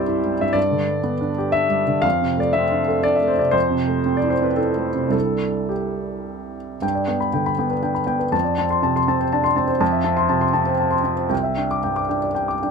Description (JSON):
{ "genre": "neoclassical minimalist piano", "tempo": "104-126 BPM", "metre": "3/4", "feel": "rubato", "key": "C major", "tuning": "A4 = 440 Hz", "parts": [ { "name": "warm upright piano", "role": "solo", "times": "0.0-12.7 s", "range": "C2 to D6", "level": "-18 LUFS", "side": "equal", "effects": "none" } ], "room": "light reverb", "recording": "close, detailed microphones", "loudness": "-18 LUFS", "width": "side -5 dB against mid", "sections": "0.0-6.8 A section; 6.8-12.7 B section", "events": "none", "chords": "0.0 Cadd9; 0.6 G; 2.0 Dm7/F; 3.5 Fmaj7; 5.1 Cadd9; 6.8 G; 8.3 Dm7/F; 9.8 Fmaj7; 11.3 Cadd9", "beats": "0.08 | 0.56 1.05 1.55 | 2.05 2.54 3.04 | 3.55 4.06 4.59 | 5.14 5.71 6.27 | 6.83 7.34 7.84 | 8.34 8.84 9.33 | 9.81 10.30 10.80 | 11.31 11.85 12.38" }